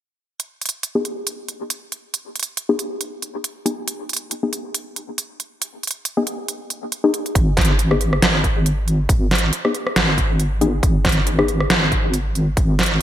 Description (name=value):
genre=deep dubstep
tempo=138 BPM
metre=4/4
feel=swing 56% on 16ths, half-time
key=G# minor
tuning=A4 = 435 Hz
part: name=dubstep drum kit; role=drums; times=0.4-13.0 s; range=hi-hat, rim click, snare drum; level=-20 LUFS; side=right 1 dB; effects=gated reverb
part: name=filtered dub chord stab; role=stabs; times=1.0-11.5 s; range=B3 to G#4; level=-23 LUFS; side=left 3 dB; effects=chorus, dub echo
part: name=deep soft wobble bass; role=bass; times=7.4-13.0 s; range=G#1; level=-19 LUFS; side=equal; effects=chorus, tube saturation
part: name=electronic kick drum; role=drums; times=7.4-12.7 s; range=none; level=-19 LUFS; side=equal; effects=none
room=light reverb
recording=bright 1980s-style digital production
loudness=-18 LUFS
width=side -11 dB against mid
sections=0.4-7.4 A section; 7.4-13.0 B section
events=filter sweep on synth stab 7.4-13.0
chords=0.4 G#m; 7.4 N.C.